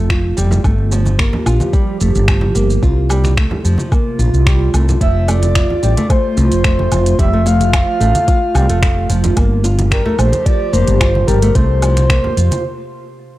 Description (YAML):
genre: organic downtempo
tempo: 110 BPM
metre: 4/4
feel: straight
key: G minor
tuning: A4 = 440 Hz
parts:
  - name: warbly tape-like pad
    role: sustained chords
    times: 0.0-12.6 s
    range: C3 to G4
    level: -23 LUFS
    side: right 1 dB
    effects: chorus, built-in reverb, phaser, sidechain pumping
  - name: nylon-string guitar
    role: arpeggios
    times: 0.0-12.6 s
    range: F3 to F4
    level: -21 LUFS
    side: right 1 dB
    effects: low-pass filter, analog delay
  - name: woody fretless electric bass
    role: bass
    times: 0.0-12.5 s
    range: F1 to F2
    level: -14 LUFS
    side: equal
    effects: sidechain pumping
  - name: electronic kick drum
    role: drums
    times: 0.1-12.2 s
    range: none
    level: -15 LUFS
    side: equal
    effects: overdrive, studio ambience
  - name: organic electronic drum kit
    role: drums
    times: 0.1-12.6 s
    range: finger snaps, hi-hat, shaker, woodblock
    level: -23 LUFS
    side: equal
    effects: overdrive, studio ambience
  - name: congas and bongos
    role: percussion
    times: 0.5-12.6 s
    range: none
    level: -24 LUFS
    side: right 1 dB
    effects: none
  - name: breathy flute-like synth lead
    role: melody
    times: 5.0-12.6 s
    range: Bb4 to F5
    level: -19 LUFS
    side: equal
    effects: wide subtle chorus, analog delay
room: little or no reverb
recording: dry, gritty hardware recording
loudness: -11 LUFS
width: side -16 dB against mid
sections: 0.0-13.4 A section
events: break 12.6-13.4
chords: 0.0 F; 0.6 Gm7; 2.8 C7sus4; 5.0 F; 9.4 Gm7; 11.6 C7sus4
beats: 0.10 | 0.64 1.19 1.73 2.28 | 2.83 3.37 3.92 4.46 | 5.01 5.55 6.10 6.64 | 7.19 7.73 8.28 8.82 | 9.37 9.92 10.46 11.01 | 11.55 12.10 12.64